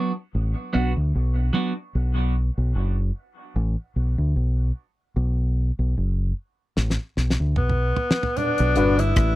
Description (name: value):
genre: dub reggae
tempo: 75 BPM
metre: 4/4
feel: swing 55% on 16ths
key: B minor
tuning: A4 = 440 Hz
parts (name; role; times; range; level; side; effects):
- clean electric guitar; accompaniment; 0.0-1.7 s; F#3 to F#4; -26 LUFS; right 3 dB; phaser, dub echo
- deep dub fingered electric bass; bass; 0.3-9.4 s; F#1 to D2; -21 LUFS; equal; none
- damped 70s drum kit; drums; 6.8-9.4 s; hi-hat, kick drum, rim click, snare drum, toms; -23 LUFS; equal; none
- warm tenor saxophone; melody; 7.6-9.4 s; B3 to E4; -23 LUFS; left 1 dB; dub echo
- congas; percussion; 8.4-9.4 s; none; -31 LUFS; right 5 dB; none
- dark upright piano; stabs; 8.8-8.9 s; D4 to B4; -23 LUFS; left 5 dB; dub echo
room: little or no reverb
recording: dry, close 1970s-style studio recording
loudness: -21 LUFS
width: side -16 dB against mid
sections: 0.0-8.4 A section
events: drum fill 6.8-8.4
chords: 0.0 B5; 8.4 Bm